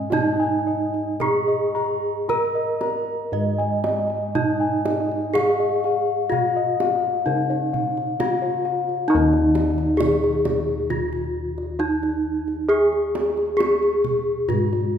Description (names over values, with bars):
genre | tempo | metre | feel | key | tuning
Javanese gamelan | 55-67 BPM | 4/4 | straight | unclear | A4 = 440 Hz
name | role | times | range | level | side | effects
gamelan-type bronze metallophone | melody | 0.0-15.0 s | Db4-40c to Eb5 | -22 LUFS | right 1 dB | none
gamelan-type bossed gongs | bass | 0.0-15.0 s | Eb2 to Ab4-20c | -25 LUFS | left 1 dB | none
gamelan-type bossed gongs | arpeggios | 0.1-8.9 s | Db5-40c to Bb5+20c | -25 LUFS | left 5 dB | none
kendang | percussion | 0.1-14.8 s | none | -30 LUFS | right 4 dB | none
room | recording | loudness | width
moderate concert hall reverb, RT60 2.1 s | minimal, uncompressed stereo recording | -19 LUFS | side -8 dB against mid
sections
0.0-9.1 A section; 9.1-15.0 B section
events
none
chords
none